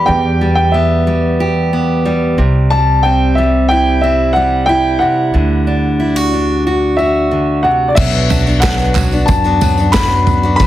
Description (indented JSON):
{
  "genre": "indie folk with a building arrangement",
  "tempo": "91 BPM",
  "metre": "4/4",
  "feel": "straight",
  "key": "unclear",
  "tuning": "A4 = 440 Hz",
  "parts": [
    { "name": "warm upright piano", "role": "melody", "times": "0.0-10.7 s", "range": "D5 to B5", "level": "-15 LUFS", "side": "left 1 dB", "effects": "slapback echo" },
    { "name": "fingerpicked steel-string acoustic guitar", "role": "accompaniment", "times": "0.0-8.0 s", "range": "E2 to G4", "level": "-15 LUFS", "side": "equal", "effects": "none" },
    { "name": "upright bass", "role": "bass", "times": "0.0-10.7 s", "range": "B1 to F#2", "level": "-16 LUFS", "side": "equal", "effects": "none" },
    { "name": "picked steel-string acoustic guitar", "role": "accompaniment", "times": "8.0-10.7 s", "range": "B2 to F#4", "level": "-18 LUFS", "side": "left 2 dB", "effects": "none" },
    { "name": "unplugged drum kit", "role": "drums", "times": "8.0-10.7 s", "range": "crash cymbal, kick drum, snare drum, toms", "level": "-15 LUFS", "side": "right 1 dB", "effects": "none" },
    { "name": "tambourine", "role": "percussion", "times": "8.0-10.7 s", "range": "none", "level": "-31 LUFS", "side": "right 10 dB", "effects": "none" },
    { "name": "group handclap", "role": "percussion", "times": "8.6-10.1 s", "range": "none", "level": "-24 LUFS", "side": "right 7 dB", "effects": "none" }
  ],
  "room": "light reverb, small room ambience",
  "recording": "heavily compressed radio sound, multiband compression",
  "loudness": "-10 LUFS",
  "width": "side -13 dB against mid",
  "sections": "0.0-8.0 A section; 8.0-10.7 B section",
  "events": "none",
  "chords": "0.0 Em; 2.4 C; 5.3 D; 8.0 Bm",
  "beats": "| 0.08 0.74 1.39 2.05 | 2.71 3.37 4.02 4.68 | 5.34 6.00 6.66 7.31 | 7.97 8.63 9.29 9.95 | 10.60"
}